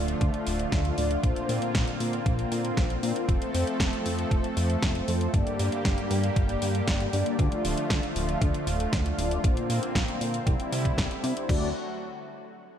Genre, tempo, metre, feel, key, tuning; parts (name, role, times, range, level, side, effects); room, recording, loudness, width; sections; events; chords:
italo disco; 117 BPM; 4/4; straight; D minor; A4 = 439 Hz
lush unison pad; sustained chords; 0.0-11.7 s; D3 to A4; -32 LUFS; equal; chorus
mellow synth brass; stabs; 0.0-11.7 s; G2 to D5; -32 LUFS; left 2 dB; chorus, tape echo
chorused synth bass; bass; 0.0-11.7 s; D1 to C3; -30 LUFS; equal
house drum kit; drums; 0.1-11.6 s; crash cymbal, hi-hat, snare drum; -33 LUFS; equal; small room reverb
electronic kick drum; drums; 0.2-11.6 s; -26 LUFS; equal; overdrive, small room reverb
light reverb, digital ambience; -24 LUFS; side -9 dB against mid
0.0-11.5 A section; 11.5-12.8 B section
filter sweep on analog polysynth 0.0-11.5
0.0 Dm; 1.2 Bbadd9; 3.3 F; 5.3 Gm; 7.4 Dm; 9.4 Bbadd9; 10.5 Cadd9; 11.5 D